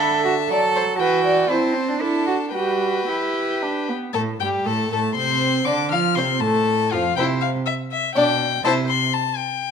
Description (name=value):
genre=quick classical-period movement for string quartet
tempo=120 BPM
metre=3/4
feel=rubato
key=G major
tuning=A4 = 440 Hz
part: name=warm violin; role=melody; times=0.0-9.7 s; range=E5 to F6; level=-24 LUFS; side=left 11 dB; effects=none
part: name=warm violin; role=second line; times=0.0-8.9 s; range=F4 to F5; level=-24 LUFS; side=left 3 dB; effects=none
part: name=dark viola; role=accompaniment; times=0.0-8.9 s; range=D3 to F4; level=-24 LUFS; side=right 2 dB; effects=none
part: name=rich cello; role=bass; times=0.0-9.0 s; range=F2 to A4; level=-23 LUFS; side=right 5 dB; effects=none
room=moderate recital hall reverb, RT60 1.3 s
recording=none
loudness=-18 LUFS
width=side -6 dB against mid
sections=0.0-4.1 A section; 4.1-9.7 B section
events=none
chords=0.0 D; 1.0 Em7; 1.5 Am/C; 2.0 D; 2.5 G; 4.1 Gsus2; 5.2 N.C.; 5.7 F; 7.2 C; 8.1 G/B; 8.6 C